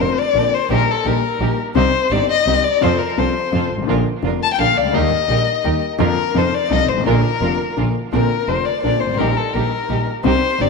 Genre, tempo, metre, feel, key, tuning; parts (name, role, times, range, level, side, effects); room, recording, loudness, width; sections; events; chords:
tango; 170 BPM; 3/4; rubato; Bb major; A4 = 440 Hz
warm violin; second line; 0.0-10.7 s; A4 to A5; -18 LUFS; left 7 dB
warm grand piano; accompaniment; 0.0-10.7 s; F1 to G4; -21 LUFS; left 9 dB
rich studio string section; stabs; 0.0-10.7 s; Bb3 to Bb4; -25 LUFS; right 11 dB; tape echo
rich double bass; bass; 0.0-10.7 s; F1 to F2; -21 LUFS; right 5 dB
wet echo chamber reverb, RT60 2.2 s; 1960s-style stereo with parts hard left and right; -15 LUFS; side -4 dB against mid
0.0-8.1 A section; 8.1-10.7 A section
violin solo 0.0-8.1, 8.1-10.7
0.0 Bbadd9; 0.7 Eb/Bb; 1.8 Cm; 2.8 F; 3.9 Bb; 4.9 Eb; 6.0 Bb/F; 6.3 F7; 7.1 Bb; 8.1 Bbadd9; 9.2 Eb/Bb